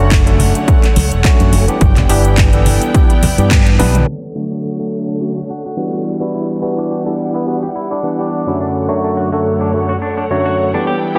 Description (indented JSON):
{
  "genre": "nu-disco, nu disco",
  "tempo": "106 BPM",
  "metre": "4/4",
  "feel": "swing 55% on 16ths",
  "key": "D major",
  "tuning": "A4 = 440 Hz",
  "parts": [
    { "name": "barky tine electric piano", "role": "accompaniment", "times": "0.0-11.2 s", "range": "F#2 to F#5", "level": "-20 LUFS", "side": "equal", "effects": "sidechain pumping, tape echo" },
    { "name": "rich studio string section", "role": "sustained chords", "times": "0.0-11.2 s", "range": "F#2 to G5", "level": "-24 LUFS", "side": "equal", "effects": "sidechain pumping, low-pass filter" },
    { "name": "fingered electric bass with an envelope filter", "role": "bass", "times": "0.0-4.0 s", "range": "E1 to G2", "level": "-15 LUFS", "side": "equal", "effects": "none" },
    { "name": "electronic kick drum", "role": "drums", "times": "0.1-3.6 s", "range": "none", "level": "-14 LUFS", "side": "equal", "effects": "overdrive" },
    { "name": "house drum kit", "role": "drums", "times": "0.1-4.1 s", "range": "handclaps, hi-hat, toms", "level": "-22 LUFS", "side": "equal", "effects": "overdrive, low-pass filter on hats, low-pass filter on snare, low-pass filter on toms, low-pass filter on room" },
    { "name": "cabasa and congas", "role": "percussion", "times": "0.1-4.0 s", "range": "none", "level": "-23 LUFS", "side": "equal", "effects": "none" },
    { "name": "semi-hollow electric guitar", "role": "riff", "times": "4.1-11.2 s", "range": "D4 to A4", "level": "-29 LUFS", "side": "equal", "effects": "subtle chorus, low-pass filter, tape echo" },
    { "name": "downlifter", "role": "sound effects", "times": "4.6-8.6 s", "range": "none", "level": "-44 LUFS", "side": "equal", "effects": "none" },
    { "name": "raspy tenor saxophone", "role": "melody", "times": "5.5-8.7 s", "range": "B3 to F#4", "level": "-30 LUFS", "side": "equal", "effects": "dub echo" }
  ],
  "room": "moderate lush hall reverb, RT60 1.8 s",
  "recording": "dense, heavily limited modern master, low-pass filter",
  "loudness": "-14 LUFS",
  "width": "mono",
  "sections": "0.0-4.1 A section; 4.1-11.2 B section",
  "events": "band accent 3.5; drum fill 3.8; filter sweep on clean electric guitar 4.1-11.2; filter sweep on string section 4.1-11.2; filter sweep 4.1-11.2",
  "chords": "0.0 Em9; 1.8 G6; 4.1 Dmaj7",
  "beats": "0.12 0.68 1.25 | 1.81 2.38 2.94 3.51 | 4.08 4.64 5.21 5.78 | 6.34 6.91 7.47 8.04 | 8.61 9.17 9.74 10.30 | 10.87"
}